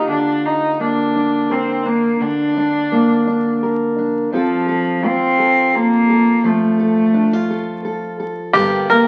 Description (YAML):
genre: acoustic folk duo or small band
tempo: 57 BPM (dotted quarters)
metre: 6/8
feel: straight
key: unclear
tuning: A4 = 440 Hz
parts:
  - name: warm cello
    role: second line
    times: 0.0-7.9 s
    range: F3 to Eb4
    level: -18 LUFS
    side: equal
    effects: none
  - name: fingerpicked steel-string acoustic guitar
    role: accompaniment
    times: 0.0-9.1 s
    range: G2 to Bb4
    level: -21 LUFS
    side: equal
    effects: none
  - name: pedal harmonium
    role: sustained chords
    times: 8.5-9.1 s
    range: Bb3 to G4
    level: -26 LUFS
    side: equal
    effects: none
  - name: bluegrass banjo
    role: arpeggios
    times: 8.5-9.1 s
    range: G4 to Bb4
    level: -15 LUFS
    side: equal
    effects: none
  - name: soft brush drum kit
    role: drums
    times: 8.5-9.1 s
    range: kick drum, ride cymbal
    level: -34 LUFS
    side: equal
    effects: none
  - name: upright bass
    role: bass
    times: 8.6-9.1 s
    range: G1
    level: -35 LUFS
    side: equal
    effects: none
room: wet club reverb, RT60 0.8 s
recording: very old 78 rpm record, vinyl crackle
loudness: -17 LUFS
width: mono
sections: 0.0-8.6 A section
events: cello solo 0.0-8.6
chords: 0.1 Bb/D; 4.3 F; 8.6 Gmadd9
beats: | 0.07 1.14 | 2.20 3.26 | 4.32 5.38 | 6.44 7.50 | 8.55